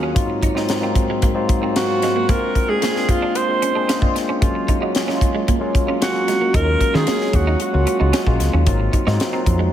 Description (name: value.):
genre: polished 1980s jazz-funk pop.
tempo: 113 BPM.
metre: 4/4.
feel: straight.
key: Eb dorian.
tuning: A4 = 440 Hz.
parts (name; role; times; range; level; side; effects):
barky tine electric piano; accompaniment; 0.0-9.7 s; Eb2 to Bb4; -21 LUFS; left 1 dB; overdrive, lush chorus.
clean electric guitar; riff; 0.0-9.7 s; Ab3 to Eb4; -27 LUFS; right 6 dB; ensemble chorus.
tight funk drum kit; drums; 0.2-9.6 s; hi-hat, kick drum, snare drum; -20 LUFS; equal; none.
breathy alto saxophone; melody; 1.8-8.4 s; F4 to C5; -21 LUFS; right 1 dB; diffuse ambient delay.
woody fretless electric bass; bass; 6.5-9.7 s; Ab1 to Eb3; -18 LUFS; equal; analog chorus.
room: moderate plate reverb, RT60 2.7 s.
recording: dreamy mix soaked in reverb.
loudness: -16 LUFS.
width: side -11 dB against mid.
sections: 0.0-9.7 A section.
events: none.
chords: 0.2 Ab13; 2.3 Bb9; 4.4 Gbmaj9; 6.5 Ebm11; 8.7 Ab13.